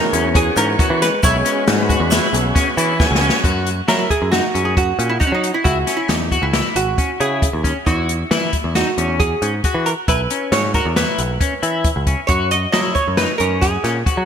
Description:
progressive instrumental, band music in an uneven meter; 136 BPM; 5/4; straight; A4 = 440 Hz
archtop guitar, miked and amplified; melody; 0.0-14.2 s; C#4 to D#5; -21 LUFS; right 3 dB; analog chorus, ping-pong delay
mellow trombone; second line; 0.0-3.0 s; E3 to G#3; -26 LUFS; left 4 dB
tonewheel organ; accompaniment; 0.0-3.4 s; B3 to G#5; -22 LUFS; equal; overdrive, slow rotary speaker
electric guitar at the edge of break-up; arpeggios; 0.0-14.3 s; C#4 to F#4; -22 LUFS; left 3 dB; analog chorus
picked electric bass; bass; 0.1-14.3 s; G#1 to F#3; -21 LUFS; equal
open jazz drum kit; drums; 0.1-14.2 s; hi-hat, kick drum, snare drum; -19 LUFS; left 1 dB; gated reverb
tube shaker; percussion; 0.6-3.3 s; -31 LUFS; right 4 dB
moderate lush hall reverb, RT60 1.8 s, studio ambience; bright 1980s-style digital production; -15 LUFS; side -8 dB against mid
0.0-3.4 A section; 3.4-14.3 B section
tonewheel organ fill 2.6-3.4; drum fill 3.0-3.4
0.0 E6; 3.4 F#5; 5.7 C#m; 7.9 E5; 12.3 F#5

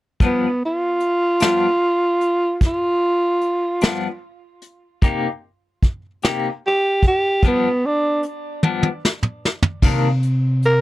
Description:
slow blues; 50 BPM (dotted quarters); 12/8; straight; A4 = 440 Hz
growling tenor saxophone; melody; 0.2-10.8 s; B3 to Bb4; -18 LUFS; right 1 dB
clean electric guitar; accompaniment; 0.2-10.1 s; G2 to G4; -22 LUFS; left 5 dB; tremolo
vintage brush drum kit; drums; 0.2-10.8 s; crash cymbal, hi-hat, kick drum, snare drum, toms; -17 LUFS; equal
upright bass; bass; 9.8-10.8 s; C3; -17 LUFS; equal
little or no reverb; dry, close 1970s-style studio recording; -17 LUFS; side -17 dB against mid
0.2-9.8 A section
drum fill 8.6-9.8
0.2 G7; 5.0 Cm7; 7.4 G7; 9.8 Cm9

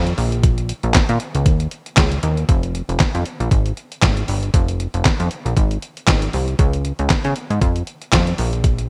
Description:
early-eighties boogie funk; 117 BPM; 4/4; swing 56% on 16ths; F minor; A4 = 440 Hz
plucky analog bass; bass; 0.0-8.9 s; F1 to Db3; -22 LUFS; equal
detuned 8-bit digital drum machine; drums; 0.1-8.9 s; handclaps, hi-hat, kick drum, snare drum; -20 LUFS; equal
light reverb; bright 1980s-style digital production; -19 LUFS; mono
0.0-2.5 A section; 2.5-8.9 B section

